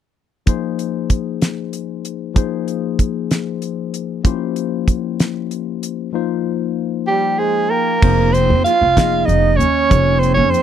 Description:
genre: electric jazz fusion.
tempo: 64 BPM (dotted quarters).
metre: 6/8.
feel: straight.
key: unclear.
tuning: A4 = 438 Hz.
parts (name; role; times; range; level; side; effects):
barky tine electric piano; accompaniment; 0.5-10.6 s; F3 to G5; -21 LUFS; left 11 dB; lush chorus.
damped 70s drum kit; drums; 0.5-10.6 s; crash cymbal, hi-hat, kick drum, snare drum; -16 LUFS; right 1 dB; none.
warm soprano saxophone; melody; 7.1-10.6 s; G4 to F5; -16 LUFS; right 2 dB; none.
growling trombone; second line; 7.1-10.6 s; G3 to F4; -21 LUFS; right 18 dB; none.
upright bass; bass; 8.0-10.5 s; F1 to F2; -17 LUFS; right 1 dB; none.
room: little or no reverb.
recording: dry, close 1970s-style studio recording.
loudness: -15 LUFS.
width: side -9 dB against mid.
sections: 0.5-8.0 A section; 8.0-10.6 B section.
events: tine electric piano fill 7.1-8.0.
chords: 0.5 Ab69/F; 4.2 C7b9/F; 6.1 F5; 8.0 Ab69/F; 9.9 Dbmaj9/F.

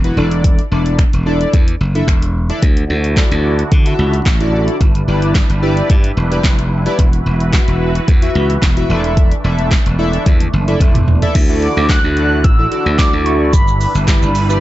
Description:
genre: dance-pop.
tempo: 110 BPM.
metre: 4/4.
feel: straight.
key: D major.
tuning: A4 = 440 Hz.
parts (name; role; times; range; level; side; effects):
chorused polysynth; accompaniment; 0.0-14.6 s; B3 to E5; -20 LUFS; left 1 dB; sidechain pumping.
glassy slap bass; bass; 0.0-14.6 s; E1 to D3; -16 LUFS; equal; sidechain pumping.
deep house drum kit; drums; 0.0-14.6 s; crash cymbal, finger snaps, handclaps, hi-hat, kick drum, shaker, snare drum, toms; -13 LUFS; equal; none.
filtered supersaw swell; sustained chords; 2.6-14.6 s; D3 to B4; -23 LUFS; right 2 dB; sidechain pumping.
mellow horn-like synth lead; melody; 11.6-14.6 s; B5 to F#6; -19 LUFS; equal; chorus.
room: little or no reverb.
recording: dark, warm production, nothing above 7.9 kHz.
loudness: -11 LUFS.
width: side -15 dB against mid.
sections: 0.0-11.4 A section; 11.4-14.6 B section.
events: drum fill 10.3-11.4.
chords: 0.2 Asus4/E; 2.6 Dadd9; 4.8 G6; 7.0 Esus2; 8.9 Asus4/E; 11.4 Dadd9; 13.5 G6.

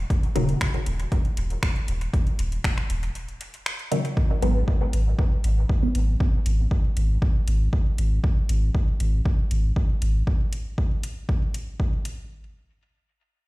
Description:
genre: dub techno.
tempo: 118 BPM.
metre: 4/4.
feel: straight.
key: G# minor.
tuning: A4 = 445 Hz.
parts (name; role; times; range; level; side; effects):
soft dub sub bass; bass; 0.0-10.2 s; D#1 to G#1; -22 LUFS; equal; tube saturation, sidechain pumping.
deep house drum kit; drums; 0.1-12.2 s; finger snaps, hi-hat; -34 LUFS; equal; overdrive, dub echo.
electronic kick drum; drums; 0.1-11.9 s; none; -23 LUFS; equal; overdrive.
filtered dub chord stab; stabs; 0.4-0.5, 3.9-5.9 s; A#2 to B3; -28 LUFS; equal; phaser, sidechain pumping, dub echo.
room: digital ambience.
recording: played on a big sound system in a bare room, stone room reverb.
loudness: -21 LUFS.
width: side -20 dB against mid.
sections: 0.0-4.2 A section; 4.2-12.3 B section.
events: break 3.2-4.2; filter sweep on synth stab 4.2-6.2.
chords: none.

